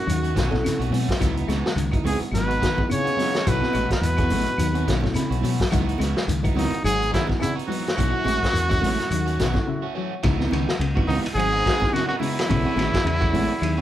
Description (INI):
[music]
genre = afrobeat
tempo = 106 BPM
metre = 4/4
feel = swing 55% on 16ths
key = C# minor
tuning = A4 = 440 Hz
[part]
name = clear trumpet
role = melody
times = 0.0-13.8 s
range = D#4 to C#5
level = -25 LUFS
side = equal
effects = none
[part]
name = warm trombone section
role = second line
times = 0.0-13.8 s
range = D#2 to C#3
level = -32 LUFS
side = right 1 dB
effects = none
[part]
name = clean electric guitar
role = arpeggios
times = 0.1-13.8 s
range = C#3 to G#3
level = -31 LUFS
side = left 7 dB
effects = none
[part]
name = fingered electric bass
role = bass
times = 0.1-13.8 s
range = G#1 to B2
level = -25 LUFS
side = equal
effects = none
[part]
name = vintage drum kit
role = drums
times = 0.1-13.8 s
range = hi-hat, kick drum, ride cymbal, snare drum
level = -25 LUFS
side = equal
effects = none
[part]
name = claves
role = percussion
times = 0.1-13.8 s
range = none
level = -42 LUFS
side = left 1 dB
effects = none
[part]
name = shekere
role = percussion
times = 0.1-9.6 s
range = none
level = -32 LUFS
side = left 1 dB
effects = none
[part]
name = electric guitar at the edge of break-up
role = stabs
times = 0.2-13.8 s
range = E3 to F#4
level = -32 LUFS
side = right 5 dB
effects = spring reverb
[part]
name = reed electric piano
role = accompaniment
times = 0.5-13.5 s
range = A3 to B5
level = -32 LUFS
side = left 1 dB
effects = overdrive
[part]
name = congas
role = percussion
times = 0.5-13.8 s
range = none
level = -31 LUFS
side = right 3 dB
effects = none
[sound]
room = moderate large studio reverb, RT60 1.0 s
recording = band playing live in one room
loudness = -20 LUFS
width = side -12 dB against mid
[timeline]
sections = 0.0-10.2 A section; 10.2-13.8 A section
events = reed electric piano fill 4.9-5.7, 9.1-10.2; break 9.7-10.2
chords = 0.0 B9sus4; 1.2 C#m11; 3.5 B9sus4; 5.7 C#m11; 8.0 B9sus4; 10.2 C#m11; 12.5 B9sus4